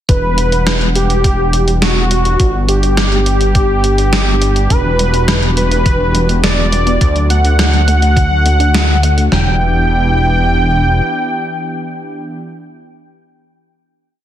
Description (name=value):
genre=synthwave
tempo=104 BPM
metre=4/4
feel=straight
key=E minor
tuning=A4 = 440 Hz
part: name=wide unison lead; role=melody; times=0.1-12.4 s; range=F#4 to G5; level=-16 LUFS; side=equal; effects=tape echo
part: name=warm analog pad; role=sustained chords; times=0.1-12.4 s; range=E3 to F#5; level=-21 LUFS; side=right 1 dB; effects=chorus, sidechain pumping
part: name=chorused synth bass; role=bass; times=0.1-11.0 s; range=E1 to D2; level=-14 LUFS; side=equal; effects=sidechain pumping
part: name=gated 80s digital drum machine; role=drums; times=0.1-9.5 s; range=kick drum, snare drum, toms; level=-13 LUFS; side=equal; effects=gated reverb, gated reverb snare, studio reverb
part: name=gated 80s digital drum machine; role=drums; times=0.1-9.3 s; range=hi-hat, snare drum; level=-17 LUFS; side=equal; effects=gated reverb, gated reverb snare, studio reverb
part: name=warbly dusty pluck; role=arpeggios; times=4.7-9.6 s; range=D3 to F#4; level=-22 LUFS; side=left 2 dB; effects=chorus, tape echo
room=light reverb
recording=dense, heavily limited modern master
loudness=-10 LUFS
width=side -11 dB against mid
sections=0.1-9.3 verse; 9.3-11.6 final chord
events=none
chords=0.1 Em7; 2.4 G; 4.7 Em7; 7.0 D; 9.3 Em7